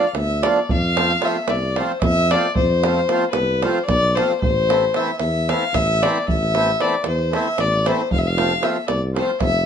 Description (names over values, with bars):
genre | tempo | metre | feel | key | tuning
balkan folk, Balkan wedding band | 227 BPM (eighths) | 7/8 | straight | unclear | A4 = 437 Hz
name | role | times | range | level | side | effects
warm fiddle | melody | 0.0-9.7 s | B4 to F5 | -20 LUFS | left 2 dB | plate reverb
accordion | accompaniment | 0.0-9.3 s | E3 to F4 | -22 LUFS | right 2 dB | none
davul | percussion | 0.0-9.5 s | none | -24 LUFS | right 3 dB | none
mellow tuba | bass | 0.1-9.7 s | F1 to F2 | -23 LUFS | equal | none
room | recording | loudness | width
wet small room reverb, RT60 0.5 s | nothing above 10.9 kHz | -17 LUFS | side -8 dB against mid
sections
0.7-9.7 A section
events
speeding up 0.0-9.7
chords
0.0 Dm; 0.7 F; 4.4 Am; 8.1 F